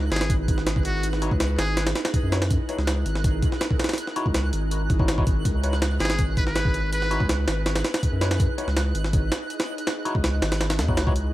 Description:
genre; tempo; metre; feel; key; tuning
drum and bass, jungle; 163 BPM; 4/4; straight; C# dorian; A4 = 440 Hz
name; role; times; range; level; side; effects
ethereal airy pad; sustained chords; 0.0-11.3 s; D#4 to D#5; -33 LUFS; right 1 dB; ensemble chorus, built-in reverb, vintage 12-bit sampler grit
saturated sub bass; bass; 0.0-11.3 s; G#1 to F#2; -25 LUFS; equal; none
twinkling granular texture; texture; 0.0-11.3 s; F#6; -37 LUFS; right 4 dB; built-in reverb
trumpet with metal mute; melody; 0.1-1.9, 6.0-7.3 s; F#4 to B4; -32 LUFS; equal; dub echo
jungle sampler-style drum kit; drums; 0.1-11.2 s; hi-hat, kick drum, snare drum; -24 LUFS; equal; none
overdriven tine electric piano; stabs; 1.2-11.1 s; D#4 to C#5; -33 LUFS; left 2 dB; phaser, dub echo
room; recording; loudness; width
little or no reverb; vinyl crackle; -21 LUFS; side -15 dB against mid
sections
0.0-11.3 A section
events
drop 0.0-11.3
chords
0.0 C#m11

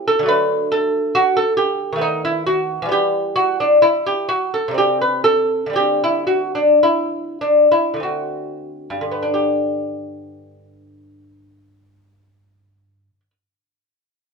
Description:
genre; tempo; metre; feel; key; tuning
classical, baroque-style dance for lute; 44-70 BPM; 3/4; rubato; G major; A4 = 445 Hz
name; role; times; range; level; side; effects
lute; solo; 0.0-13.5 s; G2 to B4; -16 LUFS; equal; none
room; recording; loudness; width
light reverb; band playing live in one room; -15 LUFS; side -4 dB against mid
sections
0.0-9.3 A section; 9.3-13.3 B section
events
slowing down 1.6-9.3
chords
0.3 D; 2.0 B7/D#; 2.9 Em; 4.8 Am7/C; 5.8 D7sus4; 8.0 D7; 9.3 G

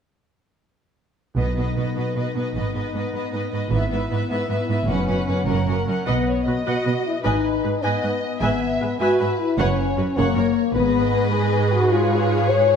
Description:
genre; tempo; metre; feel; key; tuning
cinematic, heroic adventure film score; 103 BPM (dotted quarters); 6/8; straight; B major; A4 = 438 Hz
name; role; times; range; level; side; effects
clear symphonic violin section; melody; 1.4-12.8 s; B4 to G#5; -32 LUFS; left 2 dB; none
warm symphonic violin section; second line; 1.4-12.8 s; G#4 to E5; -29 LUFS; left 3 dB; none
rich symphonic viola section; accompaniment; 1.4-12.8 s; B3 to E5; -29 LUFS; right 2 dB; none
mellow French horn section; sustained chords; 1.4-12.8 s; A#3 to C#5; -23 LUFS; left 5 dB; none
rich studio cello section; bass; 1.4-12.8 s; F#2 to B2; -25 LUFS; right 4 dB; none
rich studio double bass section; bass; 1.4-11.1 s; F#1 to B1; -26 LUFS; right 4 dB; none
timpani; percussion; 1.4-1.9, 4.9-5.4 s; F#2 to B2; -30 LUFS; left 1 dB; none
room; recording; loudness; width
moderate scoring stage reverb, RT60 1.8 s; none; -19 LUFS; side -7 dB against mid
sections
1.4-6.1 A section; 6.1-12.8 B section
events
none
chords
1.4 B; 2.6 G#m; 3.7 E/G#; 4.9 F#sus4; 5.5 F#; 6.1 B; 7.2 G#m; 8.4 E/G#; 9.6 F#sus4; 10.2 F#; 10.8 G#m; 11.9 C#7/G#

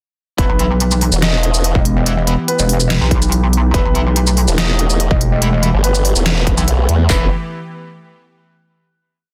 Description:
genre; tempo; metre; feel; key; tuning
heavy wobble dubstep; 143 BPM; 4/4; half-time; E harmonic minor; A4 = 441 Hz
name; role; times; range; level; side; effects
dark baby grand piano; melody; 0.4-7.3 s; B3 to D#5; -26 LUFS; equal; delay
supersaw pad; sustained chords; 0.7-7.3 s; E3 to G4; -26 LUFS; equal; phaser, sidechain pumping, low-pass filter
distorted electric guitar; stabs; 0.4-7.3 s; E3 to E4; -28 LUFS; equal; distortion, delay
formant-sweep wobble bass; bass; 0.4-7.3 s; E1 to E2; -17 LUFS; equal; chorus, overdrive
dubstep drum kit; drums; 0.4-7.2 s; handclaps, kick drum; -19 LUFS; equal; overdrive, small room ambience
dubstep drum kit; drums; 0.4-7.0 s; hi-hat, shaker, snare drum; -21 LUFS; equal; small room ambience
pulsing pluck wobble bass; bass; 0.5-6.7 s; E1 to B1; -17 LUFS; equal; chorus, overdrive
room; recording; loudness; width
little or no reverb; dense, heavily limited modern master; -15 LUFS; mono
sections
0.4-7.1 drop; 7.1-8.8 final chord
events
drop 0.4-7.1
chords
0.4 Em

